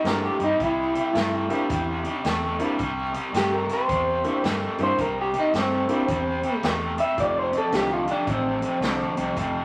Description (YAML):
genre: electric blues shuffle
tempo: 110 BPM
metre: 4/4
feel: swing 64% on 8ths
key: C mixolydian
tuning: A4 = 440 Hz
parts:
  - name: electric guitar through a small old amp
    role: melody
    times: 0.0-9.3 s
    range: C4 to E5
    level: -27 LUFS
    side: equal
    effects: harmonic tremolo
  - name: clear upright piano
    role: accompaniment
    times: 0.0-8.0 s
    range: A3 to G4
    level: -32 LUFS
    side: equal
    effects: none
  - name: cranked stack guitar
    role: riff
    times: 0.0-9.6 s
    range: F2 to A3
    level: -30 LUFS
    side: equal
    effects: overdrive, harmonic tremolo
  - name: vintage muted fingered electric bass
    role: bass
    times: 0.0-9.6 s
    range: F1 to G2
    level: -35 LUFS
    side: equal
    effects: none
  - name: swinging big-band drum kit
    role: drums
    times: 0.1-9.5 s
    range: hi-hat, kick drum, snare drum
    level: -33 LUFS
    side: equal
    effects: none
room: moderate large studio reverb, RT60 1.1 s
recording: vinyl crackle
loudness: -24 LUFS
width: mono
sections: 0.0-9.6 A section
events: clean electric guitar solo 0.0-9.6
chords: 0.0 C7; 7.2 F7